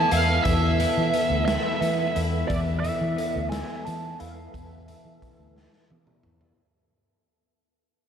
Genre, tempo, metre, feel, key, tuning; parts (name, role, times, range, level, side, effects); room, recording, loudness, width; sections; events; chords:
psychedelic rock; 59 BPM (dotted quarters); 6/8; straight; A4 = 439 Hz
fuzz lead guitar; melody; 0.0-5.9 s; D5 to A5; -26 LUFS; right 3 dB; wah, distortion, low-pass filter, diffuse ambient delay
tonewheel organ; sustained chords; 0.0-6.6 s; E3 to B4; -34 LUFS; right 7 dB; chorus vibrato, fast rotary speaker, low-pass filter
twelve-string electric guitar; riff; 0.0-6.6 s; E2 to E4; -30 LUFS; left 11 dB; phaser, low-pass filter
vintage muted fingered electric bass; bass; 0.0-6.5 s; D2 to E3; -27 LUFS; equal
raw garage drum kit; drums; 0.1-6.6 s; hi-hat, kick drum, snare drum, toms; -32 LUFS; equal
wet huge ambient reverb, RT60 8.8 s; dreamy mix soaked in reverb; -22 LUFS; side -8 dB against mid
0.0-6.6 A section
fade-out 0.0-6.6; filter sweep 0.0-6.6; drum fill 5.6-6.6
0.0 Esus4